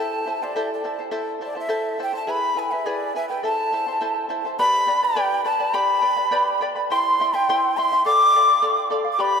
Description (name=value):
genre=andean folk, Andean ensemble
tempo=104 BPM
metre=2/4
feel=straight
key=A minor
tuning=A4 = 440 Hz
part: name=breathy bright large quena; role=melody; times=0.0-9.4 s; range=D5 to D6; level=-20 LUFS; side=equal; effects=none
part: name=charango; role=accompaniment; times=0.0-9.4 s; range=E4 to C6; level=-26 LUFS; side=left 2 dB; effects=none
room=wet cathedral reverb, RT60 6.6 s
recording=in a vast, echoing space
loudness=-19 LUFS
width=side -6 dB against mid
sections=0.0-4.6 A section; 4.6-9.4 B section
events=none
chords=0.0 Am; 2.3 E; 3.4 Am; 4.6 G; 6.9 C; 8.1 Dm